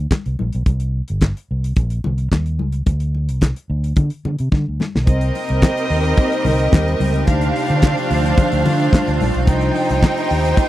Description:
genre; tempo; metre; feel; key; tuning
disco; 109 BPM; 4/4; straight; C dorian; A4 = 440 Hz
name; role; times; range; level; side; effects
fingered electric bass; bass; 0.0-10.5 s; G1 to D3; -19 LUFS; equal; none
damped 70s drum kit; drums; 0.1-10.7 s; handclaps, hi-hat, kick drum, snare drum; -14 LUFS; equal; none
congas; percussion; 0.1-10.7 s; none; -26 LUFS; left 4 dB; none
warm studio violin section; second line; 5.1-10.7 s; C4 to G5; -19 LUFS; right 1 dB; none
icy glass pad; sustained chords; 5.4-10.7 s; C3 to G4; -23 LUFS; equal; chorus, built-in reverb
room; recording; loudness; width
little or no reverb; dry, close 1970s-style studio recording; -15 LUFS; side -14 dB against mid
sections
0.0-5.1 A section; 5.1-10.7 B section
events
drum fill 4.5-5.1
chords
0.0 N.C.; 0.7 Cm; 2.9 N.C.; 5.1 Cm7; 7.3 Dm7; 9.5 Cm7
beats
0.11 | 0.66 1.21 1.77 2.32 | 2.87 3.42 3.97 4.52 | 5.08 5.62 6.17 6.72 | 7.28 7.82 8.37 8.92 | 9.47 10.02 10.57

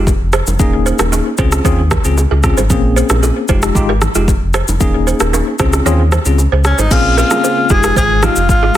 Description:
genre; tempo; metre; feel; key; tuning
afrobeats; 114 BPM; 4/4; straight; F minor; A4 = 440 Hz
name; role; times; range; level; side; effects
bell-like tine electric piano; accompaniment; 0.0-8.8 s; Ab3 to Ab4; -18 LUFS; left 3 dB; medium stereo tremolo
balafon; riff; 0.0-8.7 s; Eb4 to Db5; -21 LUFS; right 7 dB; ping-pong delay
sub bass with octave; bass; 0.0-8.7 s; Eb1 to Eb2; -14 LUFS; equal; none
deep house drum kit; drums; 0.1-8.8 s; crash cymbal, kick drum, rim click, shaker; -16 LUFS; equal; soft clipping on snare
bongos and congas; percussion; 0.1-8.6 s; none; -25 LUFS; right 3 dB; none
breathy tenor saxophone; melody; 6.7-8.8 s; Db4 to Ab4; -14 LUFS; left 1 dB; ping-pong delay
glassy FM pad; sustained chords; 7.4-8.8 s; Eb3 to F4; -24 LUFS; left 2 dB; ensemble chorus, built-in reverb, phaser
room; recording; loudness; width
light reverb, digital ambience; dense, heavily limited modern master; -10 LUFS; side -12 dB against mid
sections
0.0-6.9 A section; 6.9-8.8 B section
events
kick muted 5.9-6.9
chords
0.0 Fm9; 0.6 Eb7sus4; 1.4 Dbmaj7; 2.7 Bbm9; 3.5 Fm9; 4.8 Eb7sus4; 5.6 Dbmaj7; 6.9 Bbm9; 7.7 Fm9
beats
0.07 | 0.60 1.12 1.65 2.17 | 2.70 3.23 3.75 4.28 | 4.81 5.33 5.86 6.39 | 6.91 7.44 7.96 8.49

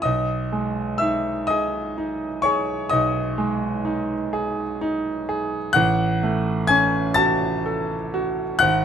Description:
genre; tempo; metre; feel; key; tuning
classical, romantic nocturne for solo piano; 42 BPM (dotted quarters); 12/8; rubato; unclear; A4 = 444 Hz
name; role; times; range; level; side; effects
clear concert grand piano; solo; 0.0-8.8 s; G#1 to A6; -20 LUFS; equal; none
room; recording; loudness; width
little or no reverb; close, detailed microphones; -20 LUFS; side -8 dB against mid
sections
0.0-8.8 A section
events
none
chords
0.0 G#m/B; 5.7 F#m/A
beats
| 0.03 1.49 2.91 4.32 | 5.74 7.16 8.61

